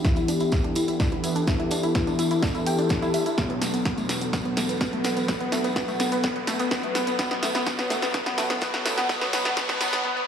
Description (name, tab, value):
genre	melodic techno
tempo	126 BPM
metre	4/4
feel	straight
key	unclear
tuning	A4 = 444 Hz
part	evolving wavetable pad	sustained chords	0.0-10.0 s	E2 to B4	-31 LUFS	left 1 dB	phaser, built-in reverb, sidechain pumping
part	wide unison pluck	arpeggios	0.0-10.2 s	A3 to G5	-28 LUFS	equal	sidechain pumping, ping-pong delay
part	analog synth brass	stabs	0.0-10.0 s	B2 to E4	-29 LUFS	left 2 dB	chorus, sidechain pumping, ping-pong delay
part	electronic kick drum	drums	0.0-9.7 s	none	-26 LUFS	equal	none
part	techno drum kit	drums	0.0-10.0 s	hi-hat, snare drum	-30 LUFS	equal	sidechain pumping on hats
part	tambourine	percussion	0.0-10.0 s	none	-36 LUFS	right 2 dB	none
part	riser	sound effects	0.0-10.0 s	none	-34 LUFS	equal	none
room	wet digital room reverb, RT60 1.2 s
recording	played on a big sound system in a bare room, stone room reverb, high-pass filter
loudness	-22 LUFS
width	side -8 dB against mid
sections	0.0-10.3 A section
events	build-up 0.0-10.3; drum fill 0.0-10.0; riser 0.0-10.0; filter sweep on synth pluck 0.0-10.3; filter sweep on analog polysynth 0.0-10.3; filter sweep on ambient pad 0.0-10.3; filter sweep 0.0-10.3; break 10.0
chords	0.0 Em7; 3.4 Bm7/E